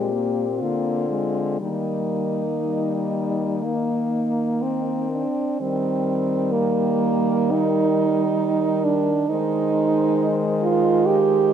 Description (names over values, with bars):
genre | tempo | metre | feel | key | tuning
classical, lyrical piece for horn quartet | 58-68 BPM | 4/4 | rubato | Eb major | A4 = 440 Hz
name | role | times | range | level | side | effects
warm French horn | melody | 0.0-11.5 s | Eb4 to C5 | -29 LUFS | left 8 dB | none
mellow French horn | second line | 0.0-11.5 s | Bb3 to G4 | -22 LUFS | right 6 dB | none
warm French horn | accompaniment | 0.0-11.5 s | G3 to C4 | -26 LUFS | left 4 dB | none
warm French horn | bass | 0.0-11.5 s | Bb2 to Eb3 | -27 LUFS | equal | none
room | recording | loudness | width
light reverb | close, detailed microphones | -19 LUFS | side -8 dB against mid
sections
0.0-5.6 A section; 5.6-11.5 B section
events
none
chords
0.0 Bb7; 1.6 Eb; 9.3 Ab/Eb